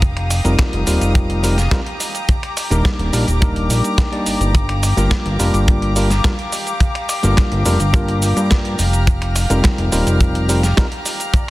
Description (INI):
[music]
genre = nu-disco, nu disco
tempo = 106 BPM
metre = 4/4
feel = straight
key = unclear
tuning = A4 = 441 Hz
[part]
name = rich chamber violin section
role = sustained chords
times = 0.0-11.5 s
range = G4 to F6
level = -24 LUFS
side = left 2 dB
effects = sidechain pumping
[part]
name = fat analog bass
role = bass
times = 0.0-10.7 s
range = Eb1 to G2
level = -17 LUFS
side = equal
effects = sidechain pumping
[part]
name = dusty soul sampler-style drum kit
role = drums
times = 0.0-11.5 s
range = finger snaps, hi-hat, shaker, snare drum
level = -23 LUFS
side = right 1 dB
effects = none
[part]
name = kick drum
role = drums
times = 0.0-11.5 s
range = none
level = -16 LUFS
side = equal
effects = soft clipping on snare
[part]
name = bell-like tine electric piano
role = accompaniment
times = 0.4-10.9 s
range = G3 to D5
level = -22 LUFS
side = equal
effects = analog delay
[sound]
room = light reverb, small room ambience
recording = dense, heavily limited modern master, faint mains hum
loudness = -14 LUFS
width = side -18 dB against mid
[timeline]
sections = 0.0-11.5 A section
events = none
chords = 0.0 F9sus4; 2.3 Ebmaj7; 4.5 Gm7; 8.8 F9sus4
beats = | 0.02 0.59 1.15 1.72 | 2.28 2.85 3.42 3.98 | 4.55 5.11 5.68 6.25 | 6.81 7.38 7.94 8.51 | 9.08 9.64 10.21 10.78 | 11.34